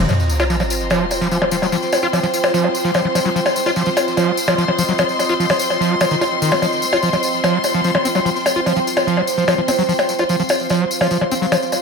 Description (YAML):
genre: psychedelic trance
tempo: 147 BPM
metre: 4/4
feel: straight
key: unclear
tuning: A4 = 439 Hz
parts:
  - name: overtone-sweeping drone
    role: sustained chords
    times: 0.0-11.8 s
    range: C4 to Eb5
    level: -23 LUFS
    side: right 2 dB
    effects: chorus, built-in reverb
  - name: screaming distorted acid line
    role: riff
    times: 0.0-11.6 s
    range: Eb3 to F4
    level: -20 LUFS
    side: moving between left 5 dB and right 6 dB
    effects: distortion, chorus, auto-pan, cassette tape, ping-pong delay
  - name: rich studio string section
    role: texture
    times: 0.0-11.8 s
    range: F4 to C6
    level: -22 LUFS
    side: left 2 dB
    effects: none
  - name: percussion blips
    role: drums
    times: 0.1-11.8 s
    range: none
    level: -20 LUFS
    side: left 2 dB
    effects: none
  - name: tambourine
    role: percussion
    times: 0.1-11.8 s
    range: none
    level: -27 LUFS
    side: left 2 dB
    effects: none
  - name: sub drop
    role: sound effects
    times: 0.1-1.7 s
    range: none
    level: -22 LUFS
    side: equal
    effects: none
room: moderate plate reverb, RT60 1.9 s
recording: none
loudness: -15 LUFS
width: side -5 dB against mid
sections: 0.1-11.8 A section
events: impact 0.1-1.7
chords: 0.1 F5